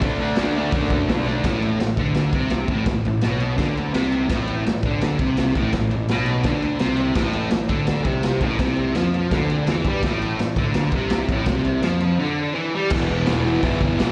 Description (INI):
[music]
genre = garage rock duo or trio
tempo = 167 BPM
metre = 4/4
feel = straight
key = A minor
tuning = A4 = 440 Hz
[part]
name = fuzz guitar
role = riff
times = 0.0-14.1 s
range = E2 to D4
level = -24 LUFS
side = equal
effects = distortion
[part]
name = fuzz fingered electric bass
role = bass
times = 0.0-14.1 s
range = E1 to G2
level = -28 LUFS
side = equal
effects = overdrive
[part]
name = raw garage drum kit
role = drums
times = 0.0-14.1 s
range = crash cymbal, hi-hat, kick drum, ride cymbal, snare drum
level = -27 LUFS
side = equal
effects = none
[sound]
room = light reverb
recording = live gig heard through the venue's PA, cassette tape, recital hall reverb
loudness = -21 LUFS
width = mono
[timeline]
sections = 0.0-1.4 A section; 1.4-12.9 B section; 12.9-14.1 A section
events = break 12.2-12.9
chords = 0.0 D; 1.4 Am; 12.9 Em